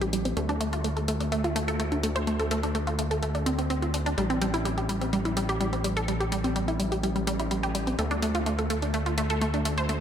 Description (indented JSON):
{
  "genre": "melodic techno",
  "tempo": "126 BPM",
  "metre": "4/4",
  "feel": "straight",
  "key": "unclear",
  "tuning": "A4 = 442 Hz",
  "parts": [
    { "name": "wide unison pluck", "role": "arpeggios", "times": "0.0-10.0 s", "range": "G3 to C5", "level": "-27 LUFS", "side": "equal", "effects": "analog delay" },
    { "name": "gritty driven synth bass", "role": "bass", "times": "0.0-10.0 s", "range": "A1 to D2", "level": "-29 LUFS", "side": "equal", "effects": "none" },
    { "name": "electronic hi-hat", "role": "drums", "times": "0.0-10.0 s", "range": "none", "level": "-36 LUFS", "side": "left 2 dB", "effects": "studio reverb" }
  ],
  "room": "wet lush hall reverb, RT60 2.3 s",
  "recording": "dreamy mix soaked in reverb",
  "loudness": "-25 LUFS",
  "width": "side -9 dB against mid",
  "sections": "0.0-10.0 A section",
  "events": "filter sweep on synth arpeggio sound 0.0-10.0",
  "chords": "0.4 D5; 4.2 A7(no3); 8.0 D5"
}